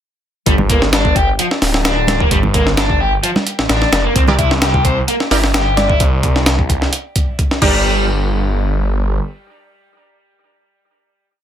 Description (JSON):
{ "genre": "breakbeat, breaks", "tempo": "130 BPM", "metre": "4/4", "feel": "swing 53% on 16ths", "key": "G minor", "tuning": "A4 = 442 Hz", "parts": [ { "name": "overdriven electric guitar", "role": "riff", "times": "0.5-8.0 s", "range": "F3 to C5", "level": "-19 LUFS", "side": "left 1 dB", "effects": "tape echo" }, { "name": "phased detuned saw bass", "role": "bass", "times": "0.5-9.2 s", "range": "D1 to C2", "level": "-17 LUFS", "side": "equal", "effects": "phaser" }, { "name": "breakbeat sampler-style drum kit", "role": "drums", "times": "0.5-7.7 s", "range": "crash cymbal, hi-hat, kick drum, snare drum", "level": "-16 LUFS", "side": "equal", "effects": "none" }, { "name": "congas", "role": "percussion", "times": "0.6-5.9 s", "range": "none", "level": "-20 LUFS", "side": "right 2 dB", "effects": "none" }, { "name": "orchestra-hit-like synth stab", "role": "stabs", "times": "4.3-11.4 s", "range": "D4 to D5", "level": "-22 LUFS", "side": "right 2 dB", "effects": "built-in reverb, cassette tape, tape echo" }, { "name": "thumb-piano-like synth pluck", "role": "melody", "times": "5.8-6.0 s", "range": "D5", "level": "-24 LUFS", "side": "right 1 dB", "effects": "chorus, old record sound, cassette tape, tape echo" } ], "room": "little or no reverb", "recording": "none", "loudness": "-12 LUFS", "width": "side -10 dB against mid", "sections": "0.5-7.9 drop; 7.9-11.4 final hit", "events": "drop 0.5-7.9", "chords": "0.5 G5; 4.2 C; 7.6 Gm" }